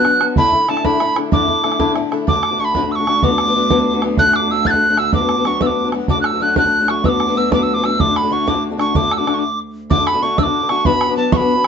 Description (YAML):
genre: celtic folk, Celtic jig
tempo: 126 BPM (dotted quarters)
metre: 6/8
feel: straight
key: D major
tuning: A4 = 440 Hz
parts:
  - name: tin whistle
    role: melody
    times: 0.0-11.7 s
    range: A5 to A6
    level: -16 LUFS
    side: right 2 dB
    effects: none
  - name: fingerpicked swing-style acoustic guitar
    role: accompaniment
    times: 0.0-11.7 s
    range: D2 to F#4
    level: -19 LUFS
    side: left 5 dB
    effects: none
  - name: bodhran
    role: percussion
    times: 0.0-11.7 s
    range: none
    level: -19 LUFS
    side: right 3 dB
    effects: none
  - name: clear cello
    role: drone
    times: 2.3-9.9 s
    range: D2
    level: -25 LUFS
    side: right 3 dB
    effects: none
room: moderate studio reverb, RT60 0.6 s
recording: band playing live in one room, nothing above 7.8 kHz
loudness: -14 LUFS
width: side -7 dB against mid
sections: 0.0-2.3 A section; 2.3-9.9 B section; 9.9-11.7 B section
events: stop 9.4-9.9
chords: 0.4 Dsus2; 2.3 D; 3.2 Bm/D; 4.2 D; 5.1 Bm/D; 6.1 D; 7.0 Bm/D; 8.0 D; 10.9 Bm